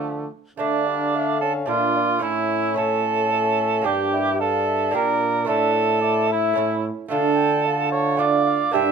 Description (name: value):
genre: classical, renaissance-style consort dance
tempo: 110 BPM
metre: 3/4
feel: straight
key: D harmonic minor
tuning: A4 = 440 Hz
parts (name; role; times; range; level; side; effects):
- warm cornet; melody; 0.0-8.9 s; D4 to A5; -30 LUFS; left 10 dB; none
- mellow cor anglais; second line; 0.0-8.9 s; A3 to E5; -21 LUFS; right 5 dB; none
- lute; accompaniment; 0.0-8.9 s; G2 to G4; -27 LUFS; right 8 dB; none
- mellow bassoon; accompaniment; 0.0-8.9 s; F3 to F4; -27 LUFS; left 5 dB; none
- warm trombone; bass; 0.0-8.9 s; G2 to D3; -28 LUFS; right 1 dB; none
room: light reverb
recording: minimal, uncompressed stereo recording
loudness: -19 LUFS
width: side -6 dB against mid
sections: 0.6-8.9 A section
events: none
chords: 0.0 Dm; 2.2 A; 3.9 Gm; 5.5 Asus4; 6.6 A; 7.1 Dm